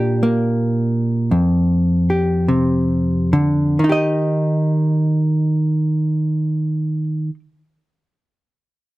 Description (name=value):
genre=solo jazz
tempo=44-58 BPM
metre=4/4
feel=swing 67% on 8ths, rubato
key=Eb major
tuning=A4 = 439 Hz
part: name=hollow-body jazz guitar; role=solo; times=0.0-7.4 s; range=F2 to Eb5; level=-16 LUFS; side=equal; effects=none
room=light reverb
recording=none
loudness=-16 LUFS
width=side -18 dB against mid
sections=0.0-3.8 A section; 3.8-9.0 B section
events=slowing down 0.0-3.8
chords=0.0 Bb69; 3.8 Eb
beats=0.22 1.30 2.48 | 3.78 5.11 6.42